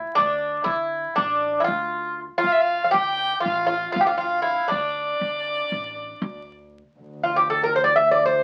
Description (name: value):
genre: Turkish makam ensemble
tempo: 238 BPM (eighths)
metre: 9/8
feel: straight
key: D makam nihavent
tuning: A4 = 441 Hz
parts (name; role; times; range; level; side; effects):
- Greek bouzouki; melody; 0.0-8.4 s; D4 to E5; -23 LUFS; equal; none
- upright bass; bass; 0.2-6.8 s; A1 to D3; -39 LUFS; equal; none
- warm violin; second line; 2.5-6.5 s; D5 to G5; -27 LUFS; equal; none
- warm double bass; drone; 7.0-8.4 s; D2; -38 LUFS; equal; none
room: moderate studio ambience, RT60 0.4 s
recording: very old 78 rpm record, vinyl crackle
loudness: -22 LUFS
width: mono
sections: 0.0-7.0 A section; 7.0-8.4 B section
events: none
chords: none